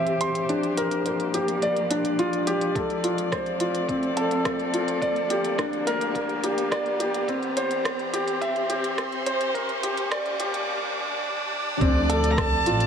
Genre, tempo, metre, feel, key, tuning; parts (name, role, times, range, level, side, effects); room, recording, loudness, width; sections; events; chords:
piano and strings electronica; 106 BPM; 4/4; straight; D minor; A4 = 444 Hz
muted string quartet; sustained chords; 0.0-12.9 s; D2 to A5; -29 LUFS; left 2 dB; sidechain pumping, low-pass filter
warm concert grand piano; riff; 0.0-12.9 s; C4 to C6; -25 LUFS; equal; ping-pong delay
riser; sound effects; 1.8-11.8 s; -34 LUFS; equal
organic electronic drum kit; drums; 0.1-12.9 s; hi-hat, rim click; -34 LUFS; right 1 dB
electronic kick drum; drums; 2.8-12.5 s; -28 LUFS; equal
dark violin; melody; 11.8-12.9 s; D5 to Bb5; -26 LUFS; right 1 dB
rich studio double bass section; bass; 11.8-12.9 s; A1 to D2; -25 LUFS; right 1 dB; tube saturation, sidechain pumping
moderate huge ambient reverb, RT60 7.6 s; high-pass filter; -23 LUFS; side -7 dB against mid
0.0-11.8 A section; 11.8-12.9 B section
build-up 0.0-11.8; filter sweep on string quartet 0.0-11.8; filter sweep 0.0-11.8; riser 1.8-11.8; drop 11.8-12.9
0.5 Gm7; 2.8 Dm7; 5.0 Bb6/D; 7.3 C; 9.5 Gm7; 11.8 Dm7